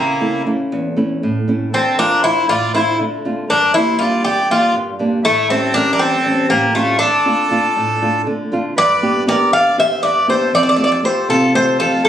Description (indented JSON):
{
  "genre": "greek folk, Greek bouzouki band",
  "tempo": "238 BPM (eighths)",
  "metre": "7/8",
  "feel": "straight",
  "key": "D minor",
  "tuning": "A4 = 438 Hz",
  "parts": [
    { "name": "Greek bouzouki", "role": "melody", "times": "0.0-12.1 s", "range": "A3 to F5", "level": "-15 LUFS", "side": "left 1 dB", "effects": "plate reverb" },
    { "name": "accordion", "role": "second line", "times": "0.0-12.1 s", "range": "E4 to D5", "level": "-21 LUFS", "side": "right 2 dB", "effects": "none" },
    { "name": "nylon-string guitar", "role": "accompaniment", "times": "0.0-12.1 s", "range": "E2 to G4", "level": "-19 LUFS", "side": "right 1 dB", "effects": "none" }
  ],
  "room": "moderate small room reverb, RT60 0.5 s",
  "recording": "recorded on a phone in the room, club reverb, compression",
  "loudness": "-13 LUFS",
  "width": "side -10 dB against mid",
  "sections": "0.0-8.8 A section; 8.8-12.1 B section",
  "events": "none",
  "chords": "0.0 A; 1.7 Dm; 3.5 Gm; 5.3 A7; 7.0 Dm; 8.8 G; 10.5 Fadd9",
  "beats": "0.21 0.46 0.71 0.96 1.22 1.47 | 1.72 1.98 2.23 2.48 2.73 2.98 3.24 | 3.49 3.74 3.99 4.25 4.50 4.75 5.00 | 5.25 5.50 5.76 6.01 6.26 6.51 6.76 | 7.01 7.27 7.52 7.77 8.02 8.27 8.52 | 8.78 9.03 9.28 9.53 9.78 10.03 10.28 | 10.53 10.78 11.04 11.29 11.54 11.79 12.04"
}